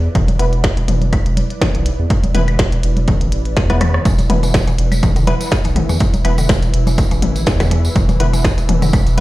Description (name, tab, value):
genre	minimal techno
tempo	123 BPM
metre	4/4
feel	swing 55% on 16ths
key	E minor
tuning	A4 = 440 Hz
part	saturated sub bass	bass	0.0-9.2 s	E1 to E2	-17 LUFS	equal	sidechain pumping
part	ethereal airy pad	texture	0.0-9.2 s	E4 to E5	-29 LUFS	right 2 dB	ensemble chorus, built-in reverb, sidechain pumping
part	electronic kick drum	drums	0.1-9.0 s	none	-17 LUFS	equal	overdrive
part	electronic toms, congas and claves	percussion	0.1-9.2 s	none	-22 LUFS	left 2 dB	dub echo
part	minimal click drum kit	drums	0.2-9.2 s	hi-hat, rim click, snare drum	-23 LUFS	equal	none
part	wavetable chord stab	stabs	0.4-9.2 s	B3 to B4	-25 LUFS	left 1 dB	dub echo
part	mallet-like synth pluck	riff	4.1-9.0 s	D3 to E3	-23 LUFS	equal	chorus, sidechain pumping, dub echo
part	tambourine	percussion	4.1-9.2 s	none	-30 LUFS	right 2 dB	none
part	swarming drone	texture	5.9-9.2 s	E3 to E4	-32 LUFS	right 1 dB	built-in reverb, sidechain pumping
room	light reverb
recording	played on a big sound system in a bare room, stone room reverb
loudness	-13 LUFS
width	side -17 dB against mid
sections	0.0-9.2 A section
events	drum fill 3.7-4.1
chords	0.0 E5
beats	| 0.15 0.64 1.13 1.61 | 2.10 2.59 3.08 3.57 | 4.05 4.54 5.03 5.52 | 6.00 6.49 6.98 7.47 | 7.96 8.44 8.93